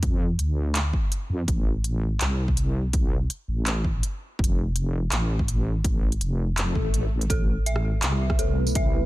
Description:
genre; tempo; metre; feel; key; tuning
half-time drum and bass; 165 BPM; 4/4; half-time; A minor; A4 = 440 Hz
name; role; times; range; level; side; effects
deep soft wobble bass; bass; 0.0-9.1 s; F1 to F2; -24 LUFS; equal; chorus
electronic kick drum; drums; 0.0-8.8 s; none; -25 LUFS; equal; none
industrial drum kit; drums; 0.0-8.8 s; handclaps, hi-hat, rim click, tambourine; -30 LUFS; equal; none
swell; sound effects; 6.7-7.3 s; none; -35 LUFS; left 6 dB; none
deep dark ambient pad; sustained chords; 8.0-9.1 s; A3 to B4; -32 LUFS; right 3 dB; chorus, built-in reverb, sidechain pumping
dark detuned synth bell; arpeggios; 7.3-9.1 s; A4 to E5; -31 LUFS; right 1 dB; chorus, phaser, ping-pong delay
room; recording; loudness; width
digital ambience; none; -22 LUFS; side -17 dB against mid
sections
0.0-9.1 A section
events
swell 6.7-7.3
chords
0.0 Dm; 1.5 Am; 4.4 F; 7.3 Amadd9

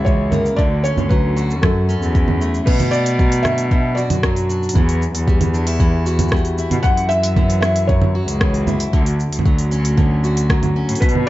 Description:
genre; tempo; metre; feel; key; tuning
folktronica; 115 BPM; 4/4; straight; B minor; A4 = 441 Hz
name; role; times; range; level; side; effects
felt-muted upright piano; melody; 0.0-11.3 s; A4 to F#5; -22 LUFS; equal; ping-pong delay
picked steel-string acoustic guitar; arpeggios; 0.0-11.3 s; F#2 to F#4; -23 LUFS; equal; ping-pong delay
warm cello; bass; 0.0-11.3 s; C#2 to B2; -18 LUFS; equal; none
electronic kick drum; drums; 0.1-11.1 s; none; -16 LUFS; equal; overdrive
organic electronic drum kit; drums; 0.1-11.3 s; cabasa, congas, crash cymbal, hi-hat, rim click; -22 LUFS; right 2 dB; overdrive
vibraphone with medium hard mallets; second line; 11.0-11.1 s; B4; -23 LUFS; left 1 dB; none
room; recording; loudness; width
moderate studio reverb, RT60 0.6 s; dark, warm production, nothing above 7.8 kHz; -14 LUFS; side -16 dB against mid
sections
0.0-2.7 A section; 2.7-11.3 B section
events
none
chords
0.0 F#7; 0.6 Dmaj7; 1.6 F#m7; 2.7 Bm; 4.8 Emadd9; 6.8 F#5; 8.9 Dmaj7

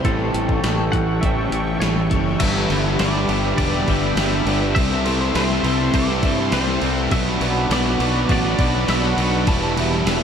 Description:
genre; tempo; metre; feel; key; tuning
rock, shoegaze and dream pop; 102 BPM; 4/4; straight; G major; A4 = 440 Hz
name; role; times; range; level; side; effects
twelve-string electric guitar; melody; 0.0-10.2 s; A4 to A5; -28 LUFS; equal; analog chorus, ping-pong delay
sweeping resonant pad; sustained chords; 0.0-10.2 s; F#4 to C#6; -27 LUFS; equal; chorus
fingerpicked twelve-string acoustic guitar; arpeggios; 0.0-10.2 s; E3 to G4; -31 LUFS; right 5 dB; wide subtle chorus, ping-pong delay
overdriven semi-hollow guitar; riff; 0.0-10.2 s; G2 to E4; -25 LUFS; left 7 dB; lush chorus
overdriven semi-hollow guitar; riff; 0.0-10.2 s; G2 to E4; -26 LUFS; right 7 dB; reverse reverb
fuzz fingered electric bass; bass; 0.0-10.2 s; E1 to G2; -23 LUFS; equal; overdrive
gated 80s digital drum machine; drums; 0.0-10.2 s; crash cymbal, hi-hat, kick drum, snare drum; -23 LUFS; equal; gated reverb, gated reverb snare
crunchy overdriven guitar; riff; 2.4-10.2 s; E2 to C4; -26 LUFS; left 1 dB; none
room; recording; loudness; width
wet huge ambient reverb, RT60 4.8 s; dreamy mix soaked in reverb; -17 LUFS; side -7 dB against mid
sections
0.0-2.4 A section; 2.4-10.2 B section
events
none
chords
0.1 A7; 2.4 G6; 4.8 C6; 7.1 Bm; 9.5 Em

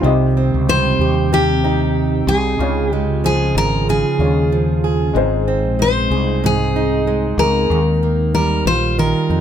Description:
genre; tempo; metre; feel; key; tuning
pop; 94 BPM; 4/4; swing 60% on 16ths; Ab major; A4 = 441 Hz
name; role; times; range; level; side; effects
felt-muted upright piano; accompaniment; 0.0-7.7 s; Ab3 to G5; -23 LUFS; left 7 dB; none
fingerpicked plugged-in steel-string acoustic guitar; accompaniment; 0.0-9.4 s; Ab2 to Ab4; -19 LUFS; right 6 dB; none
glassy FM pad; sustained chords; 0.0-7.7 s; C3 to G5; -26 LUFS; left 2 dB; ensemble chorus, built-in reverb
mellow fretless electric bass; bass; 0.0-9.4 s; Ab1 to F2; -19 LUFS; left 1 dB; none
picked steel-string acoustic guitar; melody; 0.7-9.4 s; G4 to C5; -19 LUFS; left 2 dB; none
room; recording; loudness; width
little or no reverb; none; -14 LUFS; side -9 dB against mid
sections
0.0-9.4 A section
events
none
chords
0.0 Cm; 2.6 Db; 5.2 Ab; 7.7 Ebadd9

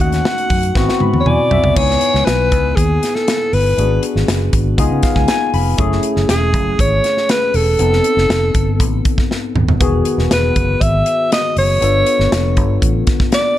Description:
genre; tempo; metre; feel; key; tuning
polished 1980s jazz-funk pop; 119 BPM; 4/4; straight; C# minor; A4 = 440 Hz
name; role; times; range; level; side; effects
breathy alto saxophone; melody; 0.0-13.6 s; G#4 to F#5; -17 LUFS; equal; none
barky tine electric piano; accompaniment; 0.0-13.6 s; D#3 to B5; -20 LUFS; left 4 dB; overdrive, lush chorus
fingered electric bass; bass; 0.0-13.0 s; Eb1 to C#3; -17 LUFS; equal; none
modern studio drum kit; drums; 0.0-13.4 s; crash cymbal, hi-hat, kick drum, snare drum, toms; -18 LUFS; equal; none
room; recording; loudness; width
light reverb, small room ambience; dark, warm production; -12 LUFS; side -13 dB against mid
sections
0.0-1.8 A section; 1.8-13.6 B section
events
drum fill 0.8-1.8, 9.3-9.8; tine electric piano fill 0.8-1.8, 4.8-5.8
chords
0.0 D#m7b5; 0.8 G#7alt; 1.8 C#m9; 3.8 G#m7b5; 4.8 C#7; 5.8 F#m9; 7.8 F7#11; 9.8 Emaj7; 11.8 G9

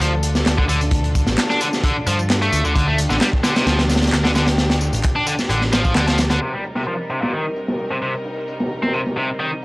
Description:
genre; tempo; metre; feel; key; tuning
breakbeat, breaks; 131 BPM; 4/4; straight; C dorian; A4 = 441 Hz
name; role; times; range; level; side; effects
rich studio string section; sustained chords; 0.0-9.6 s; C3 to Bb4; -28 LUFS; left 1 dB; sidechain pumping
tight distorted guitar; riff; 0.0-9.5 s; Bb2 to D4; -22 LUFS; equal; distortion, vintage 12-bit sampler grit, low-pass filter, tape echo
picked electric bass; bass; 0.0-6.4 s; A1 to G2; -20 LUFS; equal; tube saturation
crunchy breakbeat drum kit; drums; 0.0-9.6 s; hi-hat, kick drum, snare drum; -20 LUFS; equal; low-pass filter on kick, low-pass filter on hats, low-pass filter on snare, low-pass filter on room
electronic tambourine and handclaps; drums; 0.0-9.6 s; none; -29 LUFS; left 1 dB; low-pass filter on perc, low-pass filter on snare
room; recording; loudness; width
little or no reverb; dry, gritty hardware recording, transformer saturation, cassette tape; -16 LUFS; side -24 dB against mid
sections
0.0-6.4 A section; 6.4-9.6 B section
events
band accent 6.0; filter sweep on distorted electric guitar 6.4-9.6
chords
0.0 Dm; 6.4 Cm7

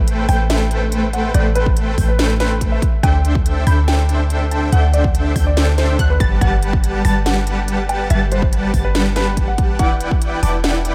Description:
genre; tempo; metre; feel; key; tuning
future bass; 142 BPM; 4/4; half-time; A dorian; A4 = 440 Hz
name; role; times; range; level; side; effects
unison pluck; arpeggios; 0.0-10.9 s; D6 to A6; -33 LUFS; equal; sidechain pumping, delay
dense compressed supersaw; riff; 0.0-10.9 s; G3 to A5; -24 LUFS; equal; cassette tape, sidechain pumping, delay
warm 808-style bass; bass; 0.0-10.9 s; E1 to D2; -20 LUFS; equal; sidechain pumping
trap drum kit; drums; 0.1-10.9 s; hi-hat, snare drum; -26 LUFS; equal; none
dark baby grand piano; melody; 0.3-10.8 s; B4 to B5; -27 LUFS; equal; lush chorus, sidechain pumping, tape echo
electronic kick drum; drums; 1.7-10.2 s; none; -20 LUFS; equal; none
room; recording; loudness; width
light reverb, digital ambience; none; -16 LUFS; mono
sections
0.0-10.9 A section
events
none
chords
0.0 Am9; 2.8 D9sus4; 6.2 Gmaj9; 9.8 Em9

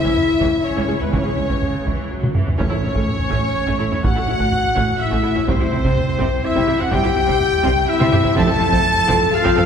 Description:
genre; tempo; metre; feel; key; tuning
cinematic, epic orchestral film score; 124 BPM; 3/4; straight; unclear; A4 = 438 Hz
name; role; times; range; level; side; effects
clear symphonic violin section; melody; 0.0-9.7 s; B4 to A5; -28 LUFS; left 3 dB; none
clear symphonic violin section; second line; 0.0-9.7 s; B4 to A5; -27 LUFS; left 1 dB; none
small flute group; second line; 0.0-2.1 s; B4 to E5; -31 LUFS; left 2 dB; none
rich symphonic viola section; accompaniment; 0.0-9.6 s; C#3 to A4; -26 LUFS; right 2 dB; none
mellow French horn section; sustained chords; 0.0-9.7 s; B3 to A4; -21 LUFS; left 4 dB; none
rich symphonic cello section; bass; 0.0-9.6 s; C#2 to C3; -25 LUFS; right 2 dB; none
taiko ensemble; drums; 0.1-9.7 s; none; -22 LUFS; right 1 dB; none
rich symphonic double bass section; bass; 0.4-9.6 s; F1 to C#2; -26 LUFS; right 2 dB; none
bright trumpet section; stabs; 2.6-9.7 s; C5 to A5; -23 LUFS; right 1 dB; none
timpani; percussion; 2.6-3.3 s; A2; -28 LUFS; right 1 dB; none
room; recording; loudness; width
wet church reverb, RT60 2.7 s; recorded in a church or concert hall; -15 LUFS; side -7 dB against mid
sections
0.0-2.6 A section; 2.6-9.7 A section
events
drum fill 2.2-2.6, 8.0-8.4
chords
0.0 C#m; 2.6 A; 5.5 C; 8.4 F

